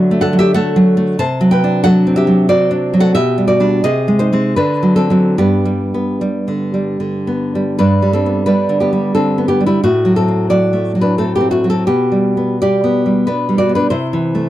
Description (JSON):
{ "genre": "romantic piece for solo classical guitar", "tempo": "70-95 BPM", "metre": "3/4", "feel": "rubato", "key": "G major", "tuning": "A4 = 440 Hz", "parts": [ { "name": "nylon-string guitar", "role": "solo", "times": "0.0-14.5 s", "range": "G2 to A5", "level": "-12 LUFS", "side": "equal", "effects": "none" } ], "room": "little or no reverb", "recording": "dry, close 1970s-style studio recording", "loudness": "-12 LUFS", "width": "side -14 dB against mid", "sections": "0.0-7.8 A section; 7.8-14.5 B section", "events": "none", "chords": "0.0 D; 1.2 D7/C; 3.2 G/B; 3.8 Ab/C; 4.6 D7; 5.4 G; 9.8 D7/A; 11.9 G/B; 13.9 Am/C" }